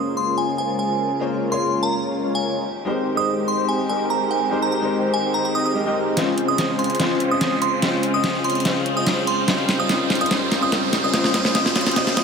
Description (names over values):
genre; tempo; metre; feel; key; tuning
future bass; 145 BPM; 4/4; half-time; Ab major; A4 = 439 Hz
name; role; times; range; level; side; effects
glassy synth bell; melody; 0.0-12.2 s; Ab5 to Eb6; -24 LUFS; right 1 dB; chorus, phaser, tape echo
warm grand piano; accompaniment; 0.0-12.2 s; Db3 to C6; -26 LUFS; left 3 dB; none
muted studio string section; sustained chords; 0.0-12.2 s; Db3 to C5; -33 LUFS; left 1 dB; low-pass filter
soft supersaw; riff; 0.0-12.2 s; G3 to Eb5; -23 LUFS; equal; low-pass filter
riser and swell; sound effects; 2.8-12.2 s; none; -31 LUFS; right 1 dB; none
dubstep drum kit; drums; 6.2-12.2 s; hi-hat, snare drum; -22 LUFS; equal; none
room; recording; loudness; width
moderate huge ambient reverb, RT60 4.7 s; none; -18 LUFS; side -5 dB against mid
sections
0.0-12.2 A section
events
build-up 0.0-12.2; filter sweep on supersaw synth 0.0-12.2; filter sweep on string section 0.0-12.2; riser 2.8-12.2; drum fill 6.2-12.2; swell 12.0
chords
0.0 Bbm7; 2.7 Abmaj7; 6.2 Dbmaj7; 9.5 Eb7